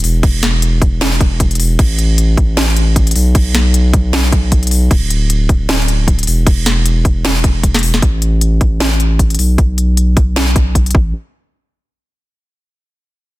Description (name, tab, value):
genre	future bass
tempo	154 BPM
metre	4/4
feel	swing 56% on 16ths, half-time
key	unclear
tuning	A4 = 440 Hz
part	saturated sub bass	bass	0.0-11.1 s	D1 to B1	-13 LUFS	equal	sidechain pumping
part	trap drum kit	drums	0.0-10.9 s	crash cymbal, hi-hat, snare drum	-17 LUFS	equal	none
part	electronic kick drum	drums	0.2-11.0 s	none	-11 LUFS	equal	none
room	little or no reverb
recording	dense, heavily limited modern master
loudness	-10 LUFS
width	side -18 dB against mid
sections	0.0-8.0 A section; 8.0-11.1 B section; 11.1-12.7 C section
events	drop 0.0-8.0; filter sweep on sub bass 8.0-11.1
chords	none